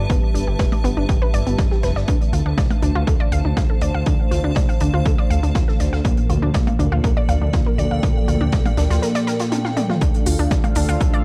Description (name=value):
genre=melodic techno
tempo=121 BPM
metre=4/4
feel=straight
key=D minor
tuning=A4 = 440 Hz
part: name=analog pluck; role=arpeggios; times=0.0-11.2 s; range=B3 to F5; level=-29 LUFS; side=equal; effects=chorus, sidechain pumping, analog delay
part: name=analog synth brass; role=stabs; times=0.0-11.2 s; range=Bb2 to G4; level=-29 LUFS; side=equal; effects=chorus, sidechain pumping, analog delay
part: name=swelling detuned saw bass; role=bass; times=0.0-11.1 s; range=F1 to D2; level=-23 LUFS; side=equal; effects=sidechain pumping
part: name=granular cloud pad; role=texture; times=0.0-11.2 s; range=A4 to A5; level=-33 LUFS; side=equal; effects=built-in reverb, sidechain pumping
part: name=electronic kick drum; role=drums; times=0.1-11.1 s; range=none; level=-22 LUFS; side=equal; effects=none
part: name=loose indie drum kit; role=drums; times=0.1-11.1 s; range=hi-hat, snare drum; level=-39 LUFS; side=equal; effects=high-pass filter on hats, high-pass filter on snare, high-pass filter on room
part: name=techno drum kit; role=drums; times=0.6-11.2 s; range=hi-hat, percussion blips, shaker, toms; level=-28 LUFS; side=equal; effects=none
part: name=sweeping resonant pad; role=sustained chords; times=10.0-11.2 s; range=D4 to F5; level=-32 LUFS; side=equal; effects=chorus, sidechain pumping
room=little or no reverb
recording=none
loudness=-19 LUFS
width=mono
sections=0.0-11.2 A section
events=filter sweep on synth arpeggio sound 0.0-11.2; filter sweep on analog polysynth 0.0-11.2; break 9.0-10.0; drum fill 9.5-10.0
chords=0.0 G; 2.1 Dm; 6.0 Bb; 10.0 Dm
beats=| 0.10 0.59 1.09 1.59 | 2.08 2.58 3.07 3.57 | 4.07 4.56 5.06 5.55 | 6.05 6.54 7.04 7.54 | 8.03 8.53 9.02 9.52 | 10.02 10.51 11.01